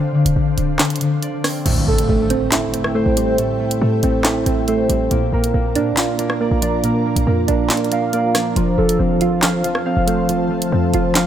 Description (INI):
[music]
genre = hip hop, drill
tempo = 139 BPM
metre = 4/4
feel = half-time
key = A phrygian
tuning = A4 = 440 Hz
[part]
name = ethereal airy pad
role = sustained chords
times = 0.0-11.3 s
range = D3 to Bb5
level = -26 LUFS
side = equal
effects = ensemble chorus, built-in reverb
[part]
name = concert harp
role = arpeggios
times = 0.0-11.3 s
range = D3 to F5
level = -22 LUFS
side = left 4 dB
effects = low-pass filter, digital delay
[part]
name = short 808-style bass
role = bass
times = 0.0-11.3 s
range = D1 to Bb2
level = -21 LUFS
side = equal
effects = none
[part]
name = drill drum kit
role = drums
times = 0.3-11.3 s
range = crash cymbal, handclaps, hi-hat, rim click, snare drum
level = -20 LUFS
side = equal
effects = none
[part]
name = soft electric-piano-like synth keys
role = accompaniment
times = 1.7-11.3 s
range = A2 to F5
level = -19 LUFS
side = right 4 dB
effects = chorus, low-pass filter
[part]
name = impact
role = sound effects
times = 1.7-3.4 s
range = none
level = -28 LUFS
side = right 1 dB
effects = none
[part]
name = warm velvety synth lead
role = second line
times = 1.9-10.3 s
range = A4 to F5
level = -26 LUFS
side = right 2 dB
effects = chorus, digital delay
[sound]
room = light reverb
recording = none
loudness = -15 LUFS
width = side -10 dB against mid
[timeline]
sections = 0.0-1.7 A section; 1.7-11.3 B section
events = break 0.8-1.7; impact 1.7-3.4; kick muted 7.7-8.6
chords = 0.0 Dm7; 1.7 Am7; 5.1 Bb; 8.6 F